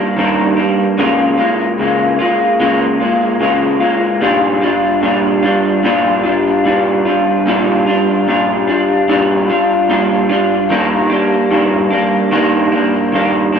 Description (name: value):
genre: indie pop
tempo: 74 BPM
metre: 4/4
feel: swing 55% on 16ths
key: Bb major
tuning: A4 = 440 Hz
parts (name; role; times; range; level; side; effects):
- electric guitar through a small old amp; solo; 0.0-13.6 s; Bb2 to F4; -11 LUFS; equal; wide subtle chorus, vibrato effect, tape echo
room: wet lush hall reverb, RT60 1.9 s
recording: dreamy mix soaked in reverb, cassette tape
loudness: -11 LUFS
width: side -7 dB against mid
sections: 0.0-13.6 A section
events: none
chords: 0.0 Ebmaj7; 1.0 Db6; 4.2 Bb6; 10.7 Ebmaj7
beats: 0.17 | 0.98 1.79 2.60 3.41 | 4.22 5.03 5.84 6.65 | 7.46 8.27 9.08 9.89 | 10.70 11.51 12.32 13.13